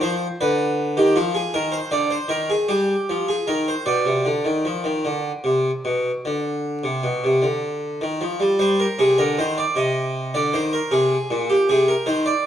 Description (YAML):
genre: classical, baroque-style two-part invention for harpsichord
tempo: 52 BPM (dotted quarters)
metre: 12/8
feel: straight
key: C minor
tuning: A4 = 440 Hz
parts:
  - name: harpsichord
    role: solo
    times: 0.0-12.4 s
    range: Bb2 to Eb5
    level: -19 LUFS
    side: equal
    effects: none
room: wet stone room reverb, RT60 1.3 s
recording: vinyl crackle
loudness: -19 LUFS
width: side -10 dB against mid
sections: 0.0-8.6 A section; 8.6-12.5 B section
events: none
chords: 0.0 G7; 1.6 Cm; 3.9 G/B (rootless); 8.6 Cm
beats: 0.41 1.55 2.71 | 3.88 5.07 6.25 7.44 | 8.62 9.77 10.92 12.06